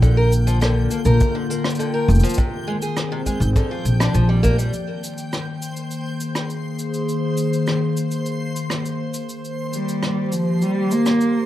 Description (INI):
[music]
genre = folktronica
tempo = 102 BPM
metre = 4/4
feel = straight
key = unclear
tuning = A4 = 440 Hz
[part]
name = warbly tape-like pad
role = sustained chords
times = 0.0-11.5 s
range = D3 to D5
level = -24 LUFS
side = left 2 dB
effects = chorus, built-in reverb
[part]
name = picked old ladder-braced acoustic guitar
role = arpeggios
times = 0.0-4.7 s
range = C3 to Bb4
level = -25 LUFS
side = equal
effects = ping-pong delay
[part]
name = upright bass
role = bass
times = 0.0-4.7 s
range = F1 to Bb1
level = -16 LUFS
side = equal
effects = none
[part]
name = cabasa and rim click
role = drums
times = 0.0-11.3 s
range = none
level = -28 LUFS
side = equal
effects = none
[part]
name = kick drum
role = drums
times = 0.0-4.6 s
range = none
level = -22 LUFS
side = equal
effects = none
[part]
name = backwards swelling texture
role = texture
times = 0.0-11.5 s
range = C5 to G6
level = -34 LUFS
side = equal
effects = built-in reverb
[part]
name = dark cello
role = melody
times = 9.7-11.5 s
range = F3 to Bb3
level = -18 LUFS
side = right 1 dB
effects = none
[sound]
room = light reverb, small room ambience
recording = rough home demo mix, vinyl crackle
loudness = -18 LUFS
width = side -13 dB against mid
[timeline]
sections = 0.0-4.7 A section; 4.7-11.5 B section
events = none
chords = 0.0 Bb; 2.4 Ab; 3.6 Bb6; 4.7 Abadd9; 9.4 Eb6